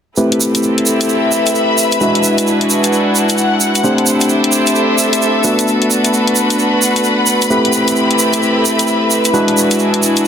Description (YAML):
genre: UK garage, two-step garage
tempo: 131 BPM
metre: 4/4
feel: swing 63% on 16ths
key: A dorian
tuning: A4 = 440 Hz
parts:
  - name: rich chamber violin section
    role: sustained chords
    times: 0.2-10.3 s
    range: C4 to C5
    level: -19 LUFS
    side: right 2 dB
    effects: vintage 12-bit sampler grit, low-pass filter
  - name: overdriven tine electric piano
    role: stabs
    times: 0.2-10.3 s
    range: G#3 to C5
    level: -14 LUFS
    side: equal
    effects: low-pass filter, tape echo
  - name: egg shaker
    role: percussion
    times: 0.2-10.3 s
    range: none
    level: -18 LUFS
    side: right 4 dB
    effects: none
  - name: dark studio string section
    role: texture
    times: 0.2-10.3 s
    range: D4 to B5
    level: -17 LUFS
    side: left 2 dB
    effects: none
  - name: electronic hi-hat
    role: drums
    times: 0.3-10.2 s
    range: none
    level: -17 LUFS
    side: left 3 dB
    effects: none
room: moderate plate reverb, RT60 1.4 s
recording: dense, heavily limited modern master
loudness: -11 LUFS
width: side -8 dB against mid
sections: 0.2-10.3 A section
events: none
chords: 0.2 Am9; 2.0 E9; 3.8 D7sus4; 5.4 Bm7; 7.5 Am9; 9.3 E9